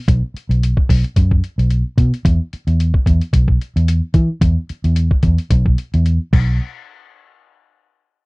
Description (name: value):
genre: afrobeat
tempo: 110 BPM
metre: 4/4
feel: swing 55% on 16ths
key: unclear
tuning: A4 = 440 Hz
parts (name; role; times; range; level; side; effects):
- vintage muted fingered electric bass; bass; 0.1-6.6 s; B1 to E3; -14 LUFS; equal; none
- lo-fi sampler-style drum kit; drums; 0.1-6.5 s; crash cymbal, hi-hat, kick drum; -16 LUFS; equal; none
room: little or no reverb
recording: dry, close 1970s-style studio recording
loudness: -14 LUFS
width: side -29 dB against mid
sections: 0.0-6.6 A section; 6.6-8.3 B section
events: none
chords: none